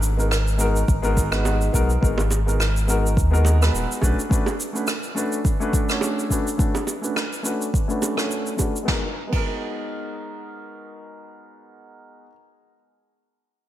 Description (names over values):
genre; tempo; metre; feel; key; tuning
sunset chillout; 105 BPM; 4/4; swing 56% on 16ths; G# minor; A4 = 440 Hz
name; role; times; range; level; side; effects
warm sub bass; bass; 0.0-4.1 s; D#1 to D#2; -20 LUFS; equal; none
vintage brush drum kit; drums; 0.0-9.5 s; crash cymbal, rim click, shaker, snare drum; -28 LUFS; right 1 dB; gated reverb
warm grand piano; accompaniment; 0.2-12.3 s; G#3 to C#5; -26 LUFS; left 1 dB; auto-pan, low-pass filter, ping-pong delay
electronic kick drum; drums; 0.9-9.5 s; none; -22 LUFS; equal; none
bongos; percussion; 1.5-8.7 s; none; -32 LUFS; right 4 dB; none
room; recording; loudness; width
moderate plate reverb, RT60 2.2 s; bright 1980s-style digital production; -19 LUFS; side -13 dB against mid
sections
0.0-8.9 A section; 8.9-11.2 B section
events
filter sweep on grand piano 0.0-8.9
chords
0.0 G#m9; 4.0 Bm9; 8.9 G#m9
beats
0.31 0.88 1.45 | 2.02 2.59 3.17 3.74 | 4.31 4.88 5.45 6.02 | 6.59 7.17 7.74 8.31 | 8.88 9.45 10.02 10.59